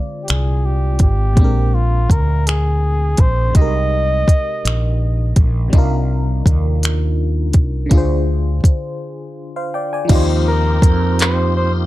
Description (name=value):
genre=slow six-eight R&B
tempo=55 BPM (dotted quarters)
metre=6/8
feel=straight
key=unclear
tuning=A4 = 437 Hz
part: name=FM electric piano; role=accompaniment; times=0.0-11.9 s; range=Bb2 to Ab5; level=-24 LUFS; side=left 1 dB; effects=chorus, phaser, tremolo
part: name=warm flugelhorn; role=melody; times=0.2-5.3, 10.5-11.7 s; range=F4 to Eb5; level=-22 LUFS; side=equal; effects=none
part: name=mellow fretless electric bass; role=bass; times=0.3-11.9 s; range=Ab1 to F2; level=-16 LUFS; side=equal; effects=lush chorus
part: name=smooth R&B drum kit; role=drums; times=0.3-11.4 s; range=crash cymbal, finger snaps, handclaps, hi-hat, kick drum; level=-13 LUFS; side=equal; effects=none
part: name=tonewheel organ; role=sustained chords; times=10.1-11.9 s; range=Bb3 to G4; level=-26 LUFS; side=equal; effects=overdrive, chorus vibrato, slow rotary speaker, plate reverb
room=little or no reverb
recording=dark, warm production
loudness=-13 LUFS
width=side -16 dB against mid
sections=0.0-10.1 A section; 10.1-11.9 B section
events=break 9.0-10.1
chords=0.0 Dm7b5; 1.4 Bb9; 3.5 Abmaj9; 5.7 Cm11; 7.9 Dm7b5; 10.1 Eb69